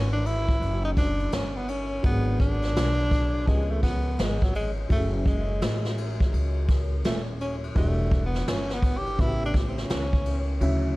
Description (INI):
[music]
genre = hip hop, jazz-hop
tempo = 84 BPM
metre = 4/4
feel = swing 64% on 16ths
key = A major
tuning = A4 = 440 Hz
[part]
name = warm tenor saxophone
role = melody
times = 0.0-10.7 s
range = E3 to G4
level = -30 LUFS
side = equal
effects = tape echo
[part]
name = warm upright piano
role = accompaniment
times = 0.0-11.0 s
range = C#3 to C#5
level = -34 LUFS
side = equal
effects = none
[part]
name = upright bass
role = bass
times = 0.0-11.0 s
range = D#1 to D2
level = -27 LUFS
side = equal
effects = none
[part]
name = vintage brush drum kit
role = drums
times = 0.3-10.8 s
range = hi-hat, kick drum, ride cymbal, snare drum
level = -26 LUFS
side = equal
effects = none
[sound]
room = small room ambience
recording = dark, warm production, vinyl crackle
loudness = -23 LUFS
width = side -20 dB against mid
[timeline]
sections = 0.0-11.0 A section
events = tenor saxophone solo 0.0-11.0; kick muted 10.6-11.0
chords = 0.0 A6; 2.0 G#m7b5; 3.5 C#7; 4.9 F#m9; 7.8 Em9; 9.2 A9